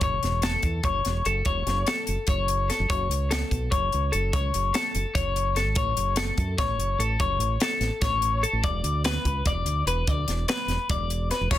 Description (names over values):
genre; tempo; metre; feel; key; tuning
math rock and midwest emo; 292 BPM (eighths); 7/8; straight; unclear; A4 = 440 Hz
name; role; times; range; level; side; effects
twelve-string electric guitar; arpeggios; 0.0-11.6 s; A4 to D5; -26 LUFS; left 4 dB; none
fingered electric bass; bass; 0.0-11.6 s; E1 to F#2; -27 LUFS; right 1 dB; none
crisp fusion drum kit; drums; 0.0-11.6 s; crash cymbal, hi-hat, kick drum, snare drum; -28 LUFS; equal; none
room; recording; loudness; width
light reverb; dense, heavily limited modern master; -23 LUFS; side -13 dB against mid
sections
0.0-11.5 A section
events
none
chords
0.0 F#m7; 2.9 F#m; 5.8 A6; 8.7 E5